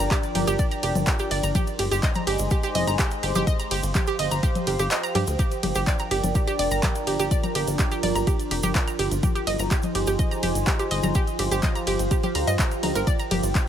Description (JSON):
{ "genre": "melodic techno", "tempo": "125 BPM", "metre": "4/4", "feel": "straight", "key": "G phrygian", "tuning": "A4 = 439 Hz", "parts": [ { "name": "dark analog pad", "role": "sustained chords", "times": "0.0-13.7 s", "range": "F3 to F5", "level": "-32 LUFS", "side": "equal", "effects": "chorus, phaser, vintage 12-bit sampler grit, sidechain pumping" }, { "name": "analog pluck", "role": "arpeggios", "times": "0.0-13.6 s", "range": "G4 to Bb5", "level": "-28 LUFS", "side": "right 3 dB", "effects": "chorus, sidechain pumping, tape echo" }, { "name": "plucky analog bass", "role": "bass", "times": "0.0-13.5 s", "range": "F1 to G2", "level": "-27 LUFS", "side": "equal", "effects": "sidechain pumping" }, { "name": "egg shaker", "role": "percussion", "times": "0.0-13.7 s", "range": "none", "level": "-36 LUFS", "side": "right 4 dB", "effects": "none" }, { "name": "warbly tape-like pad", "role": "texture", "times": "0.0-13.7 s", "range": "F4 to C6", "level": "-31 LUFS", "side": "right 1 dB", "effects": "chorus, built-in reverb, sidechain pumping" }, { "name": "electronic kick drum", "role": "drums", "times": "0.1-13.7 s", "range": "none", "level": "-23 LUFS", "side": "equal", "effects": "none" }, { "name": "punchy analog drum machine", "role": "drums", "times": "0.1-13.7 s", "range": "congas, handclaps, hi-hat, ride cymbal", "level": "-29 LUFS", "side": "left 2 dB", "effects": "none" } ], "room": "digital ambience", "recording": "none", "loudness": "-21 LUFS", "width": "side -9 dB against mid", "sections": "0.0-13.7 A section", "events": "kick drops out 4.9-5.4", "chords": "0.0 Gm7; 1.6 Fm7/G (rootless); 3.5 Csus4/G; 5.4 Gm7; 9.2 Fm7/G; 11.2 Csus4/G; 13.1 Gm7", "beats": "0.11 0.59 1.07 | 1.55 2.03 2.51 2.99 | 3.47 3.95 4.43 4.91 | 5.39 5.87 6.35 6.83 | 7.31 7.79 8.27 8.75 | 9.23 9.71 10.19 10.67 | 11.15 11.63 12.11 12.59 | 13.07 13.55" }